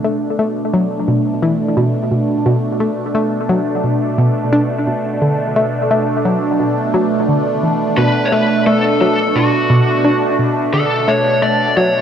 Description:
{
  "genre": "ambient, sequencer-driven space music",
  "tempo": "87 BPM",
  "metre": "4/4",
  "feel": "straight",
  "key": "B minor",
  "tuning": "A4 = 440 Hz",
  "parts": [
    { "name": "phased analog pad", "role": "sustained chords", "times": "0.0-12.0 s", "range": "B2 to D4", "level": "-17 LUFS", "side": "right 1 dB", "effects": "phaser, chorus" },
    { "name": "analog pluck", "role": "riff", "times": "0.0-11.9 s", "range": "B2 to D4", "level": "-17 LUFS", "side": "left 1 dB", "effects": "chorus, analog delay" },
    { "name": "lead guitar through a small cranked amp", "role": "melody", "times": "8.0-12.0 s", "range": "F#4 to D5", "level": "-16 LUFS", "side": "equal", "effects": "overdrive, analog delay" }
  ],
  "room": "wet plate reverb, RT60 2.5 s",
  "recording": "cassette tape",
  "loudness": "-13 LUFS",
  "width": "side -8 dB against mid",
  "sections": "0.0-12.0 A section",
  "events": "none",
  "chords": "0.0 Bm7",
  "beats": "0.39 1.08 1.77 | 2.46 3.15 3.84 4.53 | 5.22 5.91 6.60 7.29 | 7.98 8.67 9.36 10.04 | 10.73 11.42"
}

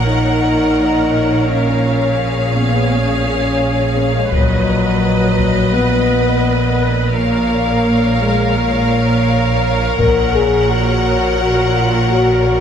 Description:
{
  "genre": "cinematic, epic orchestral film score",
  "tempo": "85 BPM",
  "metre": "4/4",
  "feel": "straight",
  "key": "unclear",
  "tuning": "A4 = 440 Hz",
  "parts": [
    { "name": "clear symphonic violin section", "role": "melody", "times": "0.0-12.6 s", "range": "D#5 to Gb5", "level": "-22 LUFS", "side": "left 4 dB", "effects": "none" },
    { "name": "rich studio violin section", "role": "second line", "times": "0.0-12.6 s", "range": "B4 to Db5", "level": "-23 LUFS", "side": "left 3 dB", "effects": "none" },
    { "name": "clear symphonic viola section", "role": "accompaniment", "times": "0.0-12.6 s", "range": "Ab4 to B4", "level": "-22 LUFS", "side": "right 3 dB", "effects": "none" },
    { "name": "mellow French horn section", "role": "sustained chords", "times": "0.0-12.6 s", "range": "F#3 to Bb4", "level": "-17 LUFS", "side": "left 2 dB", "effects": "none" },
    { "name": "clear symphonic cello section", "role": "bass", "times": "0.0-12.6 s", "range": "Bb2", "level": "-21 LUFS", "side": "right 2 dB", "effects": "none" },
    { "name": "rich studio double bass section", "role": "bass", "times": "0.0-12.6 s", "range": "Bb1", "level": "-19 LUFS", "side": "right 2 dB", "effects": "none" },
    { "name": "sub drop", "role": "sound effects", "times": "0.0-1.5 s", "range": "none", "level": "barely audible", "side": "none", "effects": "none" },
    { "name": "taiko ensemble", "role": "drums", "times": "4.3-5.7, 10.0-11.4 s", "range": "none", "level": "-20 LUFS", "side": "equal", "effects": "none" }
  ],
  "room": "wet scoring stage reverb, RT60 1.6 s",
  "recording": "none",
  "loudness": "-12 LUFS",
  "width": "side -8 dB against mid",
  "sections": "0.0-12.6 A section",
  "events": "impact 0.0-1.5",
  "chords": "0.0 Gb/Bb; 1.5 Db/Bb; 4.3 B/Bb; 7.2 Bbm; 10.0 Gb/Bb",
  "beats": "0.07 0.78 | 1.49 2.20 2.91 3.61 | 4.32 5.03 5.74 6.45 | 7.16 7.87 8.58 9.29 | 9.99 10.70 11.41 12.12"
}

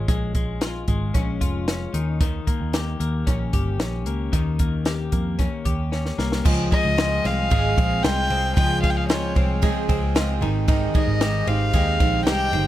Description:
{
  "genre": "jangly indie pop",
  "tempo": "113 BPM",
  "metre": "4/4",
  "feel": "straight",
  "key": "unclear",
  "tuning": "A4 = 441 Hz",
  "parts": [
    { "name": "twelve-string electric guitar", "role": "arpeggios", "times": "0.0-12.7 s", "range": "Eb3 to G4", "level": "-28 LUFS", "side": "left 6 dB", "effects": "dub echo" },
    { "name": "vintage muted picked electric bass", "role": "bass", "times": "0.0-12.7 s", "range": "F1 to F2", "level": "-25 LUFS", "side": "right 1 dB", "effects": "none" },
    { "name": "compact cocktail drum kit", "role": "drums", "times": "0.1-12.7 s", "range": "crash cymbal, hi-hat, kick drum, ride cymbal, snare drum", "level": "-23 LUFS", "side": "equal", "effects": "dub echo" },
    { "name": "picked steel-string acoustic guitar", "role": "accompaniment", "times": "6.4-12.7 s", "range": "Db3 to Ab4", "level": "-28 LUFS", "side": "right 8 dB", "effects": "dub echo" },
    { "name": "warm violin", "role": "melody", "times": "6.7-12.7 s", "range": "Db5 to G5", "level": "-25 LUFS", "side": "left 1 dB", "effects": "dub echo" }
  ],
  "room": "light reverb",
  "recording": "echo-heavy mix",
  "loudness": "-19 LUFS",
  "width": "side -13 dB against mid",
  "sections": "0.0-6.5 A section; 6.5-12.7 B section",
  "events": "drum fill 5.9-6.5",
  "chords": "0.0 Bbm7; 1.9 Eb7; 6.5 Dbmaj7; 10.4 Abmaj7",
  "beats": "| 0.09 0.61 1.15 1.68 | 2.21 2.74 3.27 3.80 | 4.33 4.86 5.39 5.92 | 6.45 6.98 7.51 8.04 | 8.57 9.10 9.62 10.15 | 10.68 11.21 11.74 12.27"
}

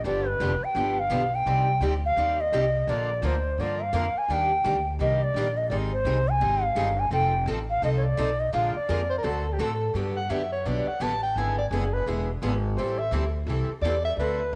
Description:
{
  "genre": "acoustic string swing (jazz manouche)",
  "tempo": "170 BPM",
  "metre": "4/4",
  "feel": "swing 61% on 8ths",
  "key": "Eb major, G major from 9.9 s",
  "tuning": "A4 = 439 Hz",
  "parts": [
    { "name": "bright bansuri", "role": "melody", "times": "0.0-9.4 s", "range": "B4 to Ab5", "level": "-28 LUFS", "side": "equal", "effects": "cassette tape" },
    { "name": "picked steel-string acoustic guitar", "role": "accompaniment", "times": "0.0-14.4 s", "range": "C3 to D5", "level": "-35 LUFS", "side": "equal", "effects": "cassette tape" },
    { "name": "upright bass", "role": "bass", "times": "0.0-14.6 s", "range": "E1 to A2", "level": "-31 LUFS", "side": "equal", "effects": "none" },
    { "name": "picked plugged-in steel-string acoustic guitar", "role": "accompaniment", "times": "0.1-14.4 s", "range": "C3 to D5", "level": "-38 LUFS", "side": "equal", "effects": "cassette tape" },
    { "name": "breathy soprano saxophone", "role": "second line", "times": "9.1-14.6 s", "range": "G4 to A5", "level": "-31 LUFS", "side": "equal", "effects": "cassette tape" }
  ],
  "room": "moderate lush hall reverb, RT60 2.3 s",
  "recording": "home recording on cassette",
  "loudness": "-26 LUFS",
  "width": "mono",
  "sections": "0.0-9.9 A section; 9.9-14.6 B section",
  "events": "soprano saxophone solo 9.9-14.6",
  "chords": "0.0 G7; 1.5 Cmadd9; 2.9 Bb; 4.3 Ebmaj7; 5.7 Abmaj7; 7.1 F7; 8.5 Bb7; 9.2 D7; 9.9 Gmaj7; 11.4 E7; 12.8 Am7",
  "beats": "| 0.05 0.40 0.76 1.11 | 1.46 1.81 2.17 2.52 | 2.87 3.23 3.58 3.93 | 4.29 4.64 4.99 5.35 | 5.70 6.05 6.41 6.76 | 7.12 7.47 7.82 8.18 | 8.53 8.88 9.23 9.59 | 9.94 10.29 10.65 11.00 | 11.36 11.71 12.06 12.42 | 12.77 13.12 13.47 13.83 | 14.18 14.53"
}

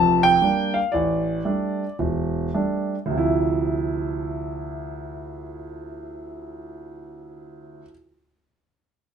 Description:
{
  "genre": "solo jazz",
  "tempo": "104-120 BPM",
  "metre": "4/4",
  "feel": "swing 68% on 8ths",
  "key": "D minor",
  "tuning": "A4 = 439 Hz",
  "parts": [
    { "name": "warm grand piano", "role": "solo", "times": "0.0-7.9 s", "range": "E1 to A5", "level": "-22 LUFS", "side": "right 1 dB", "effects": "none" }
  ],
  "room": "moderate small room ambience, RT60 0.5 s",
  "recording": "minimal, uncompressed stereo recording",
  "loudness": "-21 LUFS",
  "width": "side -7 dB against mid",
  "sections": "0.0-3.1 A section; 3.1-7.7 B section",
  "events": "slowing down 0.0-3.1",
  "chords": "0.0 Bb6; 0.9 A7sus4; 3.1 Dm9",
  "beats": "0.41 | 0.93 1.45 1.99 2.54 | 3.11 3.69 4.26 4.84 | 5.42 6.00 6.58 7.16"
}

